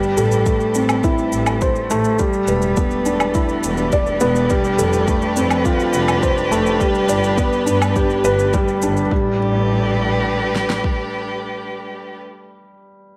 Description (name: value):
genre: piano and strings electronica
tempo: 104 BPM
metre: 4/4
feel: straight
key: unclear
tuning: A4 = 439 Hz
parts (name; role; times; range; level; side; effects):
- rich string quartet; sustained chords; 0.0-12.2 s; A3 to B4; -25 LUFS; equal; none
- felt-muted upright piano; riff; 0.0-13.2 s; G3 to D5; -21 LUFS; equal; digital delay
- shaker and woodblock; drums; 0.0-9.1 s; none; -28 LUFS; equal; small room ambience
- rich studio double bass section; bass; 0.2-10.8 s; E1 to A2; -26 LUFS; equal; sidechain pumping
- deep house drum kit; drums; 0.5-11.0 s; kick drum, snare drum; -23 LUFS; equal; small room ambience
room: light reverb, small room ambience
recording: none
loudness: -18 LUFS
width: mono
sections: 0.0-9.1 A section; 9.1-11.4 B section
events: drop 0.0-9.1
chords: 0.0 Am7; 2.2 Em7; 4.5 Fadd9; 6.8 G; 9.1 A9sus4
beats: 0.46 1.04 1.61 | 2.19 2.77 3.34 3.92 | 4.50 5.08 5.65 6.23 | 6.80 7.38 7.96 8.54 | 9.11 9.69 10.27 10.84